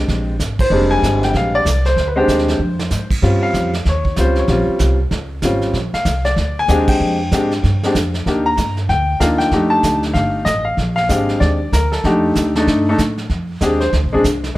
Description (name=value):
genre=jazz piano trio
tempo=191 BPM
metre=4/4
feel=swing 62% on 8ths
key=Bb mixolydian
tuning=A4 = 439 Hz
part: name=clear baby grand piano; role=melody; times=0.0-14.6 s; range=G3 to Bb5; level=-16 LUFS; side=left 1 dB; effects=plate reverb
part: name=upright bass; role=bass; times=0.0-14.6 s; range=F1 to A2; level=-18 LUFS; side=equal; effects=none
part: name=vintage brush drum kit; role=drums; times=0.1-14.6 s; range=brushed snare drum, crash cymbal, hi-hat, kick drum, ride cymbal, snare drum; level=-23 LUFS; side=right 2 dB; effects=none
room=moderate studio reverb, RT60 0.6 s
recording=none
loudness=-14 LUFS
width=side -17 dB against mid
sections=0.0-13.3 A section; 13.3-14.6 B section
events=band accent 0.6, 6.8; drum fill 2.6-2.9; grand piano solo 13.3-14.6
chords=0.0 Bb13; 3.2 Eb13; 5.7 Bb13; 8.3 Ebmaj9; 9.5 F13; 10.8 Bb13; 12.0 F13; 13.3 Bb9